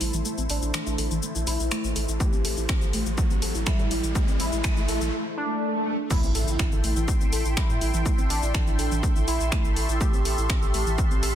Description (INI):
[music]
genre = melodic techno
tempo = 123 BPM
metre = 4/4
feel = straight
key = A minor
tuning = A4 = 440 Hz
[part]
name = resonant sweep polysynth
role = melody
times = 0.0-11.3 s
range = D4 to G4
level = -32 LUFS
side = right 1 dB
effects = chorus, sidechain pumping, ping-pong delay
[part]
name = lush unison pad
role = sustained chords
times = 0.0-11.3 s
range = A3 to C6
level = -35 LUFS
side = equal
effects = chorus, phaser, sidechain pumping
[part]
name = soft round pluck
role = arpeggios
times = 0.0-11.3 s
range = E3 to A4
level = -33 LUFS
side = left 1 dB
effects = lush chorus, sidechain pumping, digital delay
[part]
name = round analog bass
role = bass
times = 0.0-11.3 s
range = A1 to A2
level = -28 LUFS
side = equal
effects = sidechain pumping
[part]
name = techno drum kit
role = drums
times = 0.0-11.3 s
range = crash cymbal, finger snaps, hi-hat, shaker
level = -31 LUFS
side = left 2 dB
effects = overdrive, sidechain pumping on perc, studio reverb, sidechain pumping on hats, soft clipping on snare, sidechain pumping on cymbals
[part]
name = riser, swell and impact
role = sound effects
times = 1.0-8.1 s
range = none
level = -33 LUFS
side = equal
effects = none
[part]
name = electronic kick drum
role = drums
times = 2.2-11.1 s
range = none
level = -24 LUFS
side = equal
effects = overdrive, studio reverb
[part]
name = overtone-sweeping drone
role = drone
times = 7.0-11.3 s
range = A2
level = -38 LUFS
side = right 1 dB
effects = chorus, built-in reverb, sidechain pumping
[sound]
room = light reverb, digital ambience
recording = dense, heavily limited modern master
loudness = -22 LUFS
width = side -11 dB against mid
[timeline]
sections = 0.0-6.1 A section; 6.1-11.3 B section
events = build-up 0.0-6.1; filter sweep on synth arpeggio sound 0.0-6.1; filter sweep on analog polysynth 0.0-6.1; filter sweep on analog synth pad 0.0-6.1; riser 1.0-5.1; break 5.1-6.1; swell 5.1-6.1; drop 6.1-11.3; impact 6.1-8.1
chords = 0.0 Am7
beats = | 0.25 0.74 1.23 1.72 | 2.20 2.69 3.18 3.67 | 4.16 4.64 5.13 5.62 | 6.11 6.59 7.08 7.57 | 8.06 8.54 9.03 9.52 | 10.01 10.50 10.98